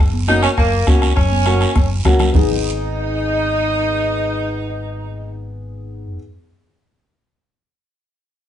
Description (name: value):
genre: latin, cumbia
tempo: 203 BPM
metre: 4/4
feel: straight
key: G# minor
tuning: A4 = 441 Hz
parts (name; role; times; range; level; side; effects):
- fingered electric bass; bass; 0.0-6.2 s; F#1 to C#2; -21 LUFS; equal; none
- congas; percussion; 0.1-2.4 s; none; -26 LUFS; right 4 dB; none
- mellow saxophone section; melody; 0.3-5.5 s; A#3 to D#4; -20 LUFS; right 1 dB; none
- dark upright piano; accompaniment; 0.3-6.2 s; A#3 to G#4; -23 LUFS; left 3 dB; none
- bombo; percussion; 0.3-2.4 s; none; -17 LUFS; equal; none
- guiro; percussion; 0.3-2.4 s; none; -28 LUFS; right 5 dB; none
room: wet studio reverb, RT60 0.9 s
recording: band playing live in one room, nothing above 10.7 kHz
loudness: -14 LUFS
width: side -10 dB against mid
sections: 0.0-2.3 A section; 2.3-4.7 B section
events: drum fill 1.5-2.3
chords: 0.0 F#; 2.3 G#m